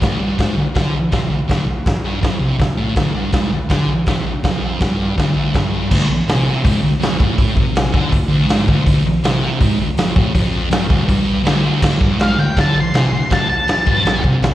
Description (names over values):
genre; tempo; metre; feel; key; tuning
garage rock duo or trio; 163 BPM; 4/4; straight; D minor; A4 = 440 Hz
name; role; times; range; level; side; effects
thick fuzz guitar; riff; 0.0-14.5 s; D2 to D3; -17 LUFS; equal; distortion, slapback echo
raw garage drum kit; drums; 0.0-14.5 s; crash cymbal, hi-hat, kick drum, snare drum; -17 LUFS; equal; none
octave-fuzz lead guitar; melody; 12.2-14.2 s; F5 to C6; -19 LUFS; left 1 dB; distortion, slapback echo
room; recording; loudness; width
light reverb; live gig heard through the venue's PA, recital hall reverb; -14 LUFS; side -14 dB against mid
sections
0.0-5.9 A section; 5.9-11.8 B section; 11.8-14.5 C section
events
lead electric guitar solo 11.8-14.5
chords
0.0 N.C.; 5.9 Dm; 11.8 D5